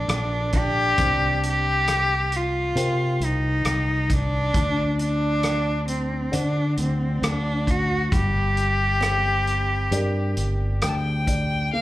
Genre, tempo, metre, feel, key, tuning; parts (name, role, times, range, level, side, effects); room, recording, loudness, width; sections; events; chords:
acoustic folk-pop ballad; 67 BPM; 4/4; straight; G minor; A4 = 440 Hz
clear cello; melody; 0.0-10.8 s; C4 to G4; -24 LUFS; equal; slapback echo
felt-muted upright piano; accompaniment; 0.0-11.8 s; G3 to G5; -33 LUFS; left 2 dB; slapback echo
fingered electric bass; bass; 0.0-11.7 s; G1 to D3; -24 LUFS; equal
loose indie drum kit; drums; 0.1-11.5 s; hi-hat, kick drum, rim click; -27 LUFS; equal
picked swing-style acoustic guitar; arpeggios; 0.5-1.4, 9.0-11.3 s; C4 to D4; -34 LUFS; right 4 dB; slapback echo
warm violin; second line; 10.8-11.8 s; F5 to A5; -27 LUFS; left 2 dB; slapback echo
small room ambience; live gig heard through the venue's PA, club reverb; -20 LUFS; side -15 dB against mid
0.0-11.7 A section
0.0 Bbmaj7; 1.0 Cm7; 4.5 D7; 8.1 Gm